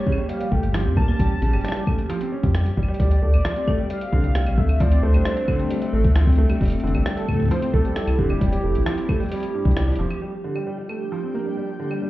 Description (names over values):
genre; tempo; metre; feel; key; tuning
IDM; 133 BPM; 4/4; straight; G dorian; A4 = 440 Hz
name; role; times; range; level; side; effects
warm velvety synth lead; melody; 0.0-9.8 s; G4 to A5; -29 LUFS; right 1 dB; chorus, tape echo
hollow soft pad; sustained chords; 0.0-12.1 s; F3 to A4; -28 LUFS; equal; chorus, vintage 12-bit sampler grit
felt-muted upright piano; arpeggios; 0.1-12.1 s; G2 to G4; -27 LUFS; right 1 dB; vintage 12-bit sampler grit, low-pass filter, ping-pong delay
electronic kick drum; drums; 0.1-9.7 s; none; -22 LUFS; equal; studio reverb
jungle sampler-style drum kit; drums; 0.1-12.0 s; claves, hi-hat, rim click; -33 LUFS; equal; studio reverb
rubbery square bass; bass; 0.5-10.1 s; F1 to F2; -19 LUFS; equal; none
twinkling granular texture; texture; 10.6-12.1 s; G4 to G5; -43 LUFS; left 1 dB; built-in reverb
room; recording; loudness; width
light reverb; heard muffled through a wall, club reverb, EQ; -19 LUFS; side -16 dB against mid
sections
0.0-10.2 A section; 10.2-12.1 B section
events
kick drops out 9.8-10.2; filter sweep on analog synth pad 10.2-12.1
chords
0.0 Bbm6; 3.0 Dm7; 6.6 Fmaj9; 10.2 Gm7